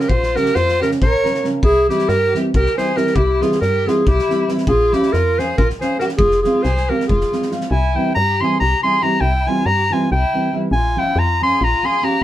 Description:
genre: balkan folk, Balkan wedding band.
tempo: 277 BPM (eighths).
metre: 7/8.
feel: straight.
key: unclear.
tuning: A4 = 437 Hz.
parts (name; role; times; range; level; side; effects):
clear clarinet; melody; 0.0-12.2 s; G4 to C6; -17 LUFS; equal; none.
warm violin; second line; 0.0-12.2 s; E4 to Bb4; -25 LUFS; left 2 dB; none.
nylon-string guitar; accompaniment; 0.0-12.2 s; Db3 to F4; -22 LUFS; right 2 dB; none.
loose indie drum kit; percussion; 0.0-7.7 s; kick drum, snare drum; -23 LUFS; equal; none.
woody FM bass; bass; 0.1-11.7 s; F1 to G2; -20 LUFS; equal; none.
room: moderate studio ambience, RT60 0.5 s.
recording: band playing live in one room.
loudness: -14 LUFS.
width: side -13 dB against mid.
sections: 0.0-7.7 A section; 7.7-12.2 A section.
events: none.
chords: 0.0 Bbm; 1.6 C; 4.7 Bbm; 6.2 Fm; 7.7 C; 10.7 Bbm.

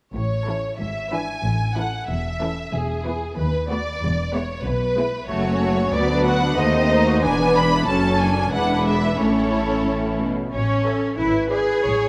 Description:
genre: quick classical-period movement for string orchestra.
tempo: 92 BPM.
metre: 2/4.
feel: straight.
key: A major.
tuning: A4 = 440 Hz.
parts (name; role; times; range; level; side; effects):
warm symphonic violin section; melody; 0.1-11.8 s; G#4 to B5; -27 LUFS; equal; none.
rich symphonic cello section; bass; 0.1-12.1 s; D2 to G#4; -29 LUFS; equal; none.
rich symphonic double bass section; bass; 0.1-12.1 s; E1 to D#2; -28 LUFS; equal; none.
warm symphonic violin section; second line; 0.5-11.8 s; G#3 to D5; -28 LUFS; equal; none.
warm symphonic viola section; accompaniment; 0.5-12.1 s; E3 to C#5; -26 LUFS; equal; none.
room: moderate concert hall reverb, RT60 2.1 s.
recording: none.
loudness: -21 LUFS.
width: mono.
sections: 0.1-10.5 A section; 10.5-12.1 A section.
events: none.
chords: 0.1 A; 0.8 E7/G#; 1.4 A; 2.7 E; 3.4 B7/D#; 4.0 E; 5.3 F#m; 5.9 Bm/D; 6.6 D#dim7; 7.2 E7; 7.9 F#m; 8.5 E7; 9.2 A; 11.2 E7/G#.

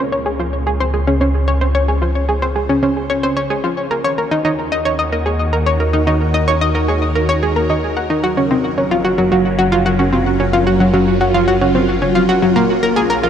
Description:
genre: ambient, sequencer-driven space music.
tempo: 111 BPM.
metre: 4/4.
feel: straight.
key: unclear.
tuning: A4 = 441 Hz.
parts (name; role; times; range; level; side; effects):
phased string machine; sustained chords; 0.0-13.3 s; Db3 to Db5; -20 LUFS; equal; ensemble chorus, phaser.
analog pluck; riff; 0.0-13.3 s; Gb3 to Gb5; -15 LUFS; equal; chorus, tape echo.
analog drone; bass; 0.2-13.3 s; Gb1 to Eb2; -20 LUFS; equal; chorus.
room: wet huge ambient reverb, RT60 8.7 s.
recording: dark, warm production.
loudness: -13 LUFS.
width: side -8 dB against mid.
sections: 0.0-13.3 A section.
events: fade-in on string machine 0.0-13.3.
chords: 0.0 Dbmaj7; 3.9 Ebm; 8.2 Gbmaj7; 12.6 Bbm7.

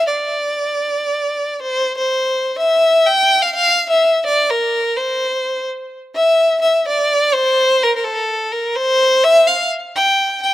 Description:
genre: klezmer.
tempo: 126 BPM.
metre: 4/4.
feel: straight.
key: D minor.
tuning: A4 = 440 Hz.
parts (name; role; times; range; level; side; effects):
clear violin; solo; 0.0-10.5 s; A4 to G5; -14 LUFS; equal; slapback echo.
room: little or no reverb.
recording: recorded outdoors, with no room sound.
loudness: -14 LUFS.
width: side -14 dB against mid.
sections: 0.0-2.1 A section; 2.1-10.5 A section.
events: none.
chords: none.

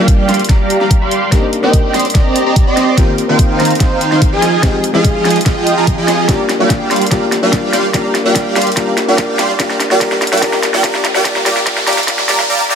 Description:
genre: future bass.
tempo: 145 BPM.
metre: 4/4.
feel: half-time.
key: C minor.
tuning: A4 = 438 Hz.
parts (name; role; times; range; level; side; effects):
felt-muted upright piano; accompaniment; 0.0-12.8 s; Ab3 to Bb4; -18 LUFS; left 3 dB; sidechain pumping, digital delay.
supersaw chords; riff; 0.0-12.8 s; Eb3 to C6; -14 LUFS; right 2 dB; lush chorus, sidechain pumping, low-pass filter, digital delay.
saturated sub bass; bass; 0.0-12.5 s; none; barely audible; none; none.
electronic kick drum; drums; 0.1-12.2 s; none; -13 LUFS; equal; overdrive.
pop drum kit; drums; 0.1-12.8 s; hi-hat, snare drum; -18 LUFS; equal; overdrive, high-pass filter on snare, high-pass filter on hats, high-pass filter on room.
riser; sound effects; 10.2-12.5 s; none; -25 LUFS; right 1 dB; none.
room: light reverb.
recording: high-pass filter.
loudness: -10 LUFS.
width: side -7 dB against mid.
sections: 0.0-12.8 A section.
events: build-up 0.0-12.8; drum fill 0.0-12.5; filter sweep on supersaw synth 0.0-12.8; filter sweep 0.0-12.8.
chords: 0.0 Gm7; 1.3 Cm9; 3.0 Eb69; 4.4 Fm9; 6.3 Gm7; 7.9 Csus2; 9.6 Ebadd9; 11.0 Fsus2.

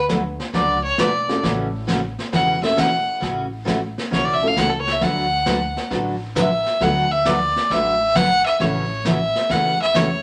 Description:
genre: country, western swing.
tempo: 134 BPM.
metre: 4/4.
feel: swing 68% on 8ths.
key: A major.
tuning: A4 = 440 Hz.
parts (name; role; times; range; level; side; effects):
clear fiddle; melody; 0.0-10.2 s; A4 to F#5; -22 LUFS; equal; none.
upright bass; bass; 0.0-10.2 s; E1 to E2; -34 LUFS; equal; none.
honky-tonk upright piano; accompaniment; 0.1-8.9 s; A3 to A4; -30 LUFS; equal; none.
picked steel-string acoustic guitar; accompaniment; 0.1-10.1 s; C#3 to B4; -25 LUFS; equal; none.
jazz brush drum kit; drums; 0.1-10.2 s; brushed snare drum, hi-hat, kick drum, snare drum; -30 LUFS; equal; none.
room: wet studio reverb, RT60 0.5 s.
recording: none.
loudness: -20 LUFS.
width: mono.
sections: 0.0-10.2 A section.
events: fiddle solo 0.0-10.2.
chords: 0.0 D6; 1.4 A6; 5.0 D6; 8.6 A6.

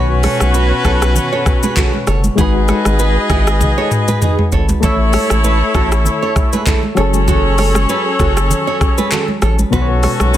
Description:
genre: afrobeats.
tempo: 98 BPM.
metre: 4/4.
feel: swing 55% on 16ths.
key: F# dorian.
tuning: A4 = 438 Hz.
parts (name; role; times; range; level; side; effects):
warm horn section; second line; 0.0-10.4 s; C#4 to D#5; -19 LUFS; left 2 dB; none.
soft electric-piano-like synth keys; accompaniment; 0.0-10.4 s; B2 to E5; -20 LUFS; left 3 dB; chorus, tremolo.
nylon-string guitar; riff; 0.0-10.4 s; D#4 to C#5; -22 LUFS; right 6 dB; ping-pong delay.
saturated sub bass; bass; 0.0-10.4 s; F#1 to B1; -15 LUFS; equal; none.
afro-pop drum kit; drums; 0.2-10.4 s; handclaps, hi-hat, kick drum, rim click, shaker, toms; -17 LUFS; equal; none.
congas; percussion; 0.2-10.3 s; none; -23 LUFS; right 3 dB; none.
room: little or no reverb.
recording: dense, heavily limited modern master.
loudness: -12 LUFS.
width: side -12 dB against mid.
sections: 0.0-10.4 A section.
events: drum fill 3.6-4.8.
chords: 0.0 F#m; 2.4 G#m7; 4.8 A; 7.0 F#madd9.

